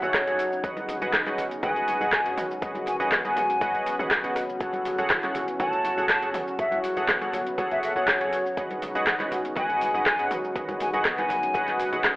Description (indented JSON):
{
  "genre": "afro house",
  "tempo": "121 BPM",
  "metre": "4/4",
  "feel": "straight",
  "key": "unclear",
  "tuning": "A4 = 440 Hz",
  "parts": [
    { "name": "mellow hollow silver concert flute", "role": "melody", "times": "0.0-11.9 s", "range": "C#5 to A5", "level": "-28 LUFS", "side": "equal", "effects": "tape echo" },
    { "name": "warm analog pad", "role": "sustained chords", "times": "0.0-12.2 s", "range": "F#3 to F#5", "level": "-35 LUFS", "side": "equal", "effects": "chorus, sidechain pumping" },
    { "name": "warm analog keys", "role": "stabs", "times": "0.0-12.1 s", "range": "F#4 to F#5", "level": "-29 LUFS", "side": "equal", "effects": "chorus, sidechain pumping, tape echo" },
    { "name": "warm 808-style bass", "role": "bass", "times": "0.0-12.1 s", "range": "D#1 to G#2", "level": "-44 LUFS", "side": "equal", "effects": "sidechain pumping" },
    { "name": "deep house drum kit", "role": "drums", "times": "0.0-12.2 s", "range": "handclaps, hi-hat, rim click, shaker, toms", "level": "-26 LUFS", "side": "equal", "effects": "overdrive" },
    { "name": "congas", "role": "percussion", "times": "0.0-12.0 s", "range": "none", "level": "-40 LUFS", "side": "right 1 dB", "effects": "none" },
    { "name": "downlifter", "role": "sound effects", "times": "0.0-0.6 s", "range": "none", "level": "barely audible", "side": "none", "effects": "none" },
    { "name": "handpan", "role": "arpeggios", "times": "0.1-12.2 s", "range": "C#3 to F#4", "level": "-33 LUFS", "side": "equal", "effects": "sidechain pumping, tape echo" },
    { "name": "electronic kick drum", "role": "drums", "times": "0.1-12.1 s", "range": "none", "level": "-34 LUFS", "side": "equal", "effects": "none" }
  ],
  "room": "moderate digital room reverb, RT60 1.1 s",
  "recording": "telephone sound",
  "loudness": "-23 LUFS",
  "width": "side -19 dB against mid",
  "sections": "0.0-12.2 A section",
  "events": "none",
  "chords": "0.0 F#madd9; 0.6 G#m7; 4.6 F#madd9; 8.6 G#m7"
}